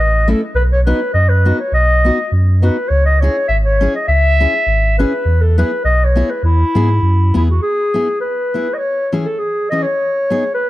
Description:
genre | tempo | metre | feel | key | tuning
alpine folk, alpine dance band | 102 BPM | 2/4 | swing 55% on 8ths | E major | A4 = 440 Hz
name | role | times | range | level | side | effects
dark clarinet | melody | 0.0-10.7 s | E4 to E5 | -16 LUFS | left 1 dB | none
sub bass with octave | bass | 0.0-7.6 s | G#1 to G#2 | -13 LUFS | equal | none
fingerpicked steel-string acoustic guitar | accompaniment | 0.3-10.4 s | E3 to G#4 | -21 LUFS | left 2 dB | none
room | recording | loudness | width
light reverb, small room ambience | none | -12 LUFS | side -16 dB against mid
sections
0.0-7.6 A section; 7.6-10.7 B section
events
none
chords
0.0 A; 0.6 B; 2.9 C#m; 5.3 E; 8.8 C#m/E; 10.0 G#m

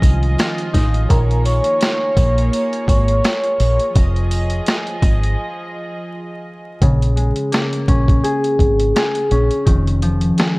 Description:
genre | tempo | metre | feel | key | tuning
hip hop, boom-bap hip-hop | 84 BPM | 4/4 | swing 55% on 16ths | Bb minor | A4 = 440 Hz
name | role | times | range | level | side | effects
concert harp | accompaniment | 0.0-10.6 s | Db3 to Ab4 | -19 LUFS | left 1 dB | cassette tape, high-pass filter, low-pass filter
warm studio string section | sustained chords | 0.0-6.8 s | F3 to Eb5 | -25 LUFS | right 1 dB | high-pass filter, low-pass filter
deep dub fingered electric bass | bass | 0.0-10.3 s | F1 to C2 | -16 LUFS | equal | none
boom bap sampler-style drum kit | drums | 0.0-10.6 s | hi-hat, kick drum, rim click, snare drum | -17 LUFS | equal | none
sleigh bells | percussion | 0.0-5.2 s | none | -38 LUFS | right 5 dB | none
vibraphone with soft mallets | melody | 1.1-3.9 s | Bb4 to Db6 | -20 LUFS | equal | high-pass filter, low-pass filter, tape echo
room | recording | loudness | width
small room ambience | worn, warbling old tape, cassette tape, vinyl crackle, warbly pitch drift | -14 LUFS | side -24 dB against mid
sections
0.0-6.8 A section; 6.8-10.6 B section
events
break 5.4-6.8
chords
0.0 Fm7; 1.1 Bbm7; 4.0 Fm7; 6.8 Bbm7; 9.7 Fm7

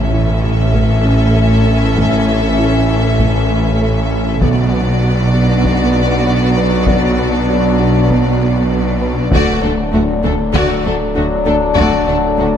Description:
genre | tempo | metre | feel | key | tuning
cinematic, hybrid orchestral and electronic film score | 98 BPM | 4/4 | straight | B minor | A4 = 440 Hz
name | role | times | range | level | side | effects
warm chamber violin section | melody | 0.0-12.5 s | F#4 to E5 | -23 LUFS | left 2 dB | none
warm symphonic violin section | second line | 0.0-12.5 s | A3 to A4 | -24 LUFS | left 3 dB | none
bright symphonic viola section | accompaniment | 0.0-12.5 s | A3 to C#4 | -23 LUFS | equal | none
dark analog pad | sustained chords | 0.0-12.6 s | E3 to E5 | -22 LUFS | left 1 dB | chorus, phaser
mellow French horn section | sustained chords | 0.0-12.6 s | E3 to D4 | -21 LUFS | left 4 dB | none
dark tuba | bass | 0.0-12.5 s | A1 to D2 | -20 LUFS | right 2 dB | none
rich symphonic double bass section | bass | 0.0-12.5 s | A1 to D2 | -20 LUFS | right 2 dB | none
snarling distorted saw bass | bass | 0.0-12.6 s | D1 to B1 | -21 LUFS | left 1 dB | distortion
warm symphonic cello section | bass | 0.0-12.5 s | D2 to B2 | -19 LUFS | right 2 dB | none
impact | sound effects | 0.0-2.0 s | none | -26 LUFS | left 1 dB | none
soft round pluck | arpeggios | 0.1-12.6 s | D3 to B4 | -25 LUFS | right 2 dB | none
taiko ensemble | drums | 0.7-12.3 s | none | -21 LUFS | left 1 dB | none
room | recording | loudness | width
moderate scoring stage reverb, RT60 1.9 s | none | -11 LUFS | side -9 dB against mid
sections
0.0-12.6 A section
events
impact 0.0-2.0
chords
0.0 A; 4.4 Bm; 9.3 D

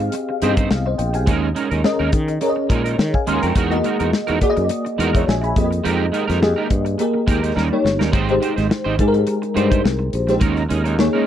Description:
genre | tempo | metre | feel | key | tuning
polished 1980s jazz-funk pop | 105 BPM | 4/4 | swing 54% on 16ths | Ab major | A4 = 440 Hz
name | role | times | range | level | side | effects
bell-like FM electric piano | accompaniment | 0.0-11.3 s | Ab3 to C6 | -20 LUFS | left 2 dB | tremolo, ensemble chorus
electric guitar at the edge of break-up | riff | 0.0-11.3 s | G3 to C5 | -22 LUFS | right 6 dB | analog chorus
sustaining fretless electric bass | bass | 0.0-11.1 s | G1 to Eb3 | -21 LUFS | equal | none
modern studio drum kit | drums | 0.1-11.1 s | hi-hat, kick drum, snare drum | -20 LUFS | left 1 dB | none
room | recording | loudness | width
little or no reverb | dry, close 1970s-style studio recording | -16 LUFS | side -10 dB against mid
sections
0.0-11.3 A section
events
drum fill 7.6-8.1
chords
0.0 Abmaj7; 1.3 Eb7sus4; 3.6 Emaj9#11; 5.6 Fm11; 7.6 Eb7; 8.1 Abmaj7; 10.4 Eb7sus4

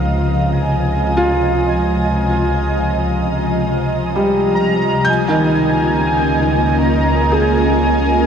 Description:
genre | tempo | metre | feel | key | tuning
ambient | 53 BPM | 4/4 | straight | unclear | A4 = 445 Hz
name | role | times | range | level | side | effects
warm velvety synth lead | melody | 0.0-8.3 s | F5 to Bb5 | -21 LUFS | equal | chorus, diffuse ambient delay
ethereal airy pad | sustained chords | 0.0-8.3 s | C3 to Eb5 | -18 LUFS | right 1 dB | ensemble chorus, built-in reverb
felt-muted upright piano | arpeggios | 0.0-8.3 s | Eb3 to G6 | -19 LUFS | equal | diffuse ambient delay
rich symphonic double bass section | bass | 0.0-8.3 s | Db2 | -20 LUFS | equal | none
glass harmonica | texture | 0.0-8.3 s | Bb5 | -33 LUFS | right 1 dB | none
room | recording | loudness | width
wet huge ambient reverb, RT60 8.3 s | dreamy mix soaked in reverb | -13 LUFS | side -7 dB against mid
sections
0.0-8.3 A section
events
none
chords
0.0 Fm7/Db; 5.1 Db69

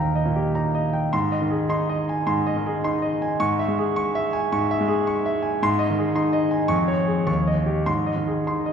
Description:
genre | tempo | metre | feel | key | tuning
classical, virtuoso piano study | 107 BPM | 4/4 | uneven beats, rubato | Ab major | A4 = 438 Hz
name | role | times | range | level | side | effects
bright concert grand piano | solo | 0.0-8.7 s | Eb2 to Db6 | -20 LUFS | equal | none
room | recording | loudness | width
wet church reverb, RT60 3.6 s | recorded in a church or concert hall | -20 LUFS | side -7 dB against mid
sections
0.0-8.7 A section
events
none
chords
0.0 Eb; 1.1 Ab; 3.4 Dbm/Ab; 5.6 Ab; 6.7 Db/F; 7.3 Eb7; 7.9 Ab

